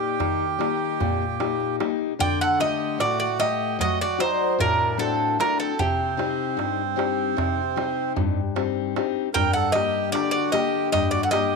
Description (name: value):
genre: greek folk, Greek bouzouki band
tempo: 151 BPM (eighths)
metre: 9/8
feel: straight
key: D phrygian dominant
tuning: A4 = 441 Hz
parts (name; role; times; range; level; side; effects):
- Greek bouzouki; melody; 0.0-11.6 s; G4 to G5; -24 LUFS; right 1 dB; none
- accordion; second line; 0.0-11.6 s; C4 to D5; -28 LUFS; right 14 dB; none
- picked steel-string acoustic guitar; accompaniment; 0.0-11.6 s; G2 to F#5; -25 LUFS; left 11 dB; none
- darbuka; percussion; 0.0-11.5 s; none; -29 LUFS; right 5 dB; none
room: moderate echo chamber reverb, RT60 1.9 s, small room ambience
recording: 1960s-style stereo with parts hard left and right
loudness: -21 LUFS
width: side -4 dB against mid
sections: 0.0-2.2 A section; 2.2-11.6 B section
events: none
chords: 0.0 Eb; 2.2 D; 5.8 Cm; 9.3 Gm